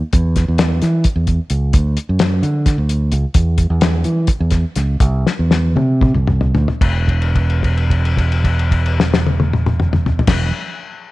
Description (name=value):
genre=psychedelic rock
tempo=221-260 BPM (eighths)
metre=7/8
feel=straight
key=unclear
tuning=A4 = 440 Hz
part: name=fingered electric bass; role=bass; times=0.1-10.5 s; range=E1 to E3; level=-15 LUFS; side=right 1 dB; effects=none
part: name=cloth-damped thuddy drum kit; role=drums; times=0.1-10.4 s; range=crash cymbal, hi-hat, kick drum, snare drum, toms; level=-17 LUFS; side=left 1 dB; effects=none
room=light reverb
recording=1960s-style stereo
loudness=-13 LUFS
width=side -18 dB against mid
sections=0.0-6.8 A section; 6.8-10.6 B section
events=slowing down 3.4-6.8; drum fill 5.3-6.8; held note 6.8-10.3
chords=none